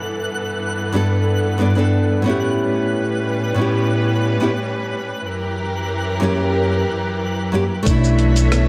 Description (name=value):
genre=sunset chillout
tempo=91 BPM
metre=4/4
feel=straight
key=B minor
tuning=A4 = 442 Hz
part: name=rich studio string section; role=sustained chords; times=0.0-8.7 s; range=F#2 to E5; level=-24 LUFS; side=equal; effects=none
part: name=twinkling granular texture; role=texture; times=0.0-7.9 s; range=F#6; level=-34 LUFS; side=equal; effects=built-in reverb
part: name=nylon-string guitar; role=accompaniment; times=0.9-8.7 s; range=F#2 to D5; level=-21 LUFS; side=equal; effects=tape echo
part: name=kalimba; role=arpeggios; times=7.9-8.7 s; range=A3 to B3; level=-25 LUFS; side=equal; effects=tape echo
part: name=upright bass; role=bass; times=7.9-8.7 s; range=B1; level=-18 LUFS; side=equal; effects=none
part: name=dusty soul sampler-style drum kit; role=drums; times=7.9-8.7 s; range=hi-hat, rim click, shaker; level=-27 LUFS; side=equal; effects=none
part: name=electronic kick drum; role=drums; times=7.9-8.0 s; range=none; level=-20 LUFS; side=equal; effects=none
room=moderate recital hall reverb, RT60 1.6 s, small room reverb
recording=none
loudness=-19 LUFS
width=mono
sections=0.0-7.9 A section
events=filter sweep on string section 0.0-7.9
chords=0.0 Gmaj9; 2.6 A9; 5.2 F#7b9; 7.9 Bm11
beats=0.61 1.27 1.93 | 2.59 3.25 3.91 4.57 | 5.23 5.88 6.54 7.20 | 7.86 8.52